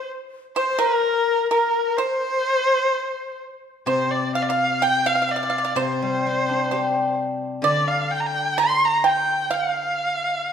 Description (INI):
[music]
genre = chinese traditional, Chinese chamber ensemble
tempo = 64 BPM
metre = 2/4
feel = rubato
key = C shang mode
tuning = A4 = 440 Hz
[part]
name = clear erhu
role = melody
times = 0.0-10.5 s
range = Bb4 to C6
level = -22 LUFS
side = equal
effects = none
[part]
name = pipa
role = second line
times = 0.0-10.5 s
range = Bb4 to C6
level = -24 LUFS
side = right 5 dB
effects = none
[part]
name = xiao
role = second line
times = 0.0-3.4 s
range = Bb4 to C5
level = -24 LUFS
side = left 7 dB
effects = none
[part]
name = steel-string zither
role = accompaniment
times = 3.9-10.5 s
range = C3 to G4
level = -27 LUFS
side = left 4 dB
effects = none
[sound]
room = wet recital hall reverb, RT60 1.8 s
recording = minimal, uncompressed stereo recording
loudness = -19 LUFS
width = side -7 dB against mid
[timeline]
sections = 0.0-3.9 A section; 3.9-10.5 B section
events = none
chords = none